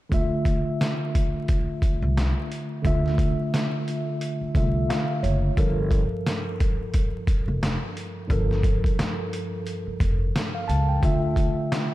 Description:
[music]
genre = hip hop, boom-bap hip-hop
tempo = 88 BPM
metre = 4/4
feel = swing 59% on 16ths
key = D minor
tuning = A4 = 440 Hz
[part]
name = mellow tine electric piano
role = accompaniment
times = 0.1-11.9 s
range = G2 to A5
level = -27 LUFS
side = equal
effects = medium stereo tremolo, cassette tape, high-pass filter, low-pass filter
[part]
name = upright bass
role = bass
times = 0.1-11.5 s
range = F1 to D2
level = -25 LUFS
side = equal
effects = none
[part]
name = trip hop sampler-style drum kit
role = drums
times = 0.1-11.9 s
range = hi-hat, kick drum, snare drum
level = -25 LUFS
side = equal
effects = none
[sound]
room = light reverb, digital ambience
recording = vinyl crackle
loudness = -22 LUFS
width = side -16 dB against mid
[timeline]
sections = 0.1-11.9 A section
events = tine electric piano fill 4.5-5.6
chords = 0.1 Dmadd9; 5.6 Gm9; 11.0 Dmadd9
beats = | 0.12 0.80 1.48 2.16 | 2.85 3.53 4.21 4.89 | 5.57 6.25 6.94 7.62 | 8.30 8.98 9.66 10.35 | 11.03 11.71

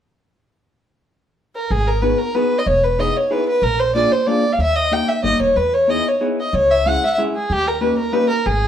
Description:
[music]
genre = musette waltz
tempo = 186 BPM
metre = 3/4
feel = straight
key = G# minor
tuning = A4 = 438 Hz
[part]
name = dark violin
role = melody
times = 1.6-8.7 s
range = G4 to G5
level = -17 LUFS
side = equal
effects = none
[part]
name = upright bass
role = bass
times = 1.7-8.7 s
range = D#1 to E2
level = -22 LUFS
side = equal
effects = none
[part]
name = vintage hollow-body jazz guitar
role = accompaniment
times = 2.0-8.3 s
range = G#3 to A#4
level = -22 LUFS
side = left 2 dB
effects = none
[sound]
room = wet studio reverb, RT60 0.8 s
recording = band playing live in one room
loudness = -15 LUFS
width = side -9 dB against mid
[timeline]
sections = 1.7-8.7 A section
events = none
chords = 0.7 N.C.; 1.7 G#m7; 2.7 Emaj7; 3.6 A#7; 4.6 D#; 5.6 Emaj7; 6.5 C#m; 7.5 D#7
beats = | 0.73 1.06 1.38 | 1.71 2.03 2.35 | 2.68 3.00 3.32 | 3.64 3.95 4.27 | 4.59 4.92 5.24 | 5.57 5.89 6.22 | 6.54 6.86 7.18 | 7.50 7.82 8.13 | 8.45

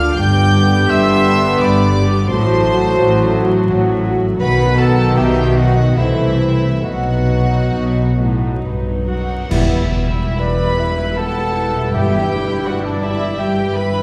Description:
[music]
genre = classical, slow romantic movement for symphony orchestra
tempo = 65-88 BPM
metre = 3/4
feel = rubato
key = E minor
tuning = A4 = 440 Hz
[part]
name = dark studio violin section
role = melody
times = 0.0-14.0 s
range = D5 to G6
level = -28 LUFS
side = equal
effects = none
[part]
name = mellow concert flute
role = second line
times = 0.0-14.0 s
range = B4 to D6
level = -27 LUFS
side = equal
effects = none
[part]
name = mellow cor anglais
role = second line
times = 0.0-14.0 s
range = D4 to G5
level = -27 LUFS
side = equal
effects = none
[part]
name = warm studio violin section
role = second line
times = 0.0-14.0 s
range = D4 to G5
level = -27 LUFS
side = equal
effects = none
[part]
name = warm studio viola section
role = accompaniment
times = 0.0-14.0 s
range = F#3 to G4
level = -26 LUFS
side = equal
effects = none
[part]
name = bright trombone section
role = sustained chords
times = 0.0-12.2 s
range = B2 to B3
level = -26 LUFS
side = equal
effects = none
[part]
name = concert harp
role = arpeggios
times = 0.0-14.0 s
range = E2 to B5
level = -26 LUFS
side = equal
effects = none
[part]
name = dark studio double bass section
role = bass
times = 0.0-14.0 s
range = E1 to D2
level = -22 LUFS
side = equal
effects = none
[part]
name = warm studio cello section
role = bass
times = 0.0-14.0 s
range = E2 to D3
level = -23 LUFS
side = equal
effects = none
[part]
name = mellow French horn section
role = sustained chords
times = 0.2-12.2 s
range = A3 to G4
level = -25 LUFS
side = equal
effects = none
[part]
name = cymbal swell, clash cymbals and concert bass drum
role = percussion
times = 6.9-11.1 s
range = none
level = -25 LUFS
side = equal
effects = none
[sound]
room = wet scoring stage reverb, RT60 1.5 s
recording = heard from further back in the room, vinyl crackle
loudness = -15 LUFS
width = mono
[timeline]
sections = 0.0-9.5 A section; 9.5-14.0 B section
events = band accent 9.5-10.4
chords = 0.2 G; 2.3 F#dim/A; 4.4 B; 6.0 Am/C; 6.8 B; 9.5 Em; 11.9 Em/G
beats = | 0.19 0.89 1.61 | 2.31 3.01 3.71 | 4.42 5.17 5.99 | 6.85 7.76 8.65 | 9.51 10.39 11.17 | 11.93 12.66 13.39

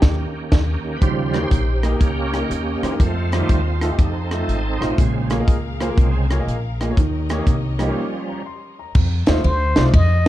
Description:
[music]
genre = uptempo gospel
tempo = 121 BPM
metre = 4/4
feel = swing 66% on 8ths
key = unclear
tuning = A4 = 439 Hz
[part]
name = trumpet with plunger mute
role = melody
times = 0.0-0.5, 9.4-10.3 s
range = G4 to Eb5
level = -23 LUFS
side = left 1 dB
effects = none
[part]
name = bright tonewheel organ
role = sustained chords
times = 0.0-8.4 s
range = Db3 to C5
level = -25 LUFS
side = right 4 dB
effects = slow rotary speaker, chorus vibrato
[part]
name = upright bass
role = bass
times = 0.0-10.3 s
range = Ab1 to F2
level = -21 LUFS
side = equal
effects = none
[part]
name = tight funk drum kit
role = drums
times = 0.0-10.3 s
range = crash cymbal, hi-hat, kick drum, ride cymbal, rim click, snare drum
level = -18 LUFS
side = equal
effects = none
[part]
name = clear grand piano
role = accompaniment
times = 1.0-9.9 s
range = Bb2 to C6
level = -26 LUFS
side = equal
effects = none
[part]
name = clear studio string section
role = sustained chords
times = 1.0-8.9 s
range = Db4 to F5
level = -36 LUFS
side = left 4 dB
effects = none
[sound]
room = light reverb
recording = dark, warm production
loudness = -17 LUFS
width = side -14 dB against mid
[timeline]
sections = 0.0-1.0 A section; 1.0-8.9 B section; 8.9-10.3 A section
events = band accent 0.0-1.0; tonewheel organ solo 1.0-8.9; break 8.0-8.9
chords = 0.0 Eb7; 3.0 F7; 5.0 Bbm7; 7.0 Eb7; 8.9 F7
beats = 0.02 0.52 | 1.01 1.51 2.00 2.50 | 3.00 3.49 3.99 4.49 | 4.98 5.48 5.98 6.47 | 6.97 7.46 7.96 8.46 | 8.95 9.45 9.94

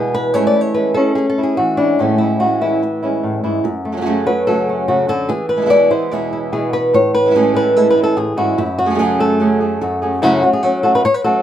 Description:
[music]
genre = flamenco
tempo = 146 BPM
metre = 4/4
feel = straight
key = F# minor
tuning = A4 = 435 Hz
[part]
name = flamenco guitar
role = melody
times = 0.0-11.4 s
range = F#2 to D5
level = -14 LUFS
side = left 1 dB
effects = none
[part]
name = flamenco guitar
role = stabs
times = 0.0-10.2 s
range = E2 to G#4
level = -19 LUFS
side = right 4 dB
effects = none
[sound]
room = moderate studio reverb, RT60 0.5 s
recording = none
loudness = -13 LUFS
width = side -10 dB against mid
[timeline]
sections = 0.0-10.2 A section; 10.2-11.4 B section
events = nylon-string guitar solo 0.0-10.2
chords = 0.3 Amaj7; 3.6 F#m; 5.3 E; 6.9 Amaj7; 8.6 F#madd9; 10.2 F#m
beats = | 0.35 0.76 1.17 1.59 | 2.00 2.41 2.82 3.24 | 3.65 4.06 4.47 4.88 | 5.30 5.71 6.12 6.53 | 6.94 7.35 7.76 8.18 | 8.59 9.00 9.41 9.82 | 10.23 10.64 11.05

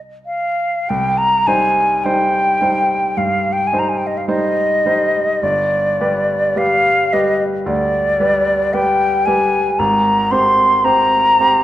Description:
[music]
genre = classical, romantic duo for flute and grand piano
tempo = 45-58 BPM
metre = 4/4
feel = rubato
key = C minor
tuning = A4 = 439 Hz
[part]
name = clear baby grand piano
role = accompaniment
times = 0.0-11.6 s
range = G1 to C5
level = -19 LUFS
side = right 1 dB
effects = none
[part]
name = mellow hollow concert flute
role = melody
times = 0.3-11.6 s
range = D5 to C6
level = -14 LUFS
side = left 1 dB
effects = none
[sound]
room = wet recital hall reverb, RT60 1.5 s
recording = none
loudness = -13 LUFS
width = side -13 dB against mid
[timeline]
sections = 0.9-11.6 A section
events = none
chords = 0.0 Cm; 5.4 G; 9.8 Abmaj7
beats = | 0.88 2.04 3.17 4.29 | 5.42 6.57 7.66 8.73 | 9.78 10.84

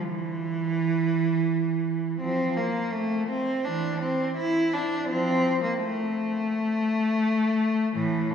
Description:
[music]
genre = classical, baroque-style suite movement for unaccompanied cello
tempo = 83 BPM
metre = 4/4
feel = rubato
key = unclear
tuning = A4 = 440 Hz
[part]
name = rich cello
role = solo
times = 0.0-8.3 s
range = A2 to E4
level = -24 LUFS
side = equal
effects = none
[sound]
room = wet church reverb, RT60 3.0 s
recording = recorded in a church or concert hall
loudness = -24 LUFS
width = side -7 dB against mid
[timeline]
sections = 0.0-8.3 A section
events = none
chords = none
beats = 0.03 0.76 1.48 | 2.21 2.93 3.65 4.37 | 5.08 5.80 6.51 7.23 | 7.95

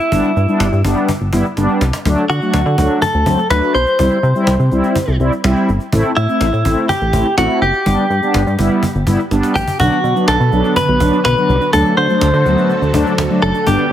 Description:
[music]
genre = synth-pop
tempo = 124 BPM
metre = 4/4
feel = straight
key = G major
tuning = A4 = 440 Hz
[part]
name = direct-recorded clean electric guitar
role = melody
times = 0.0-13.9 s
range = E4 to C5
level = -16 LUFS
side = equal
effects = wide subtle chorus, digital delay
[part]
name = cajon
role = drums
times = 0.0-13.8 s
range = none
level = -22 LUFS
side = equal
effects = none
[part]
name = mellow synth brass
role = accompaniment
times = 0.1-13.9 s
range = F#3 to E4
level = -17 LUFS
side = equal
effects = chorus
[part]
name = chorused synth bass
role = bass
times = 0.1-13.8 s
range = F#1 to D3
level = -16 LUFS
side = equal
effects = none
[part]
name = string machine, cellos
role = sustained chords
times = 9.8-13.9 s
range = D3 to B4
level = -22 LUFS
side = equal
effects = ensemble chorus
[part]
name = warbly dusty pluck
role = arpeggios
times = 9.8-13.9 s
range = D3 to D4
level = -24 LUFS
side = right 6 dB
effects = none
[sound]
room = light reverb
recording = heavily compressed radio sound, multiband compression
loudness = -12 LUFS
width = side -11 dB against mid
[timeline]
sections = 0.0-9.8 A section; 9.8-13.9 B section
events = drum fill 1.6-2.1, 9.3-9.8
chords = 0.1 G; 2.1 D; 4.0 C; 5.9 Am7; 7.9 G; 9.8 Bm; 11.7 D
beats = | 0.12 0.60 1.09 1.57 | 2.05 2.54 3.02 3.50 | 3.99 4.47 4.96 5.44 | 5.92 6.41 6.89 7.38 | 7.86 8.34 8.83 9.31 | 9.80 10.28 10.76 11.25 | 11.73 12.21 12.70 13.18 | 13.67

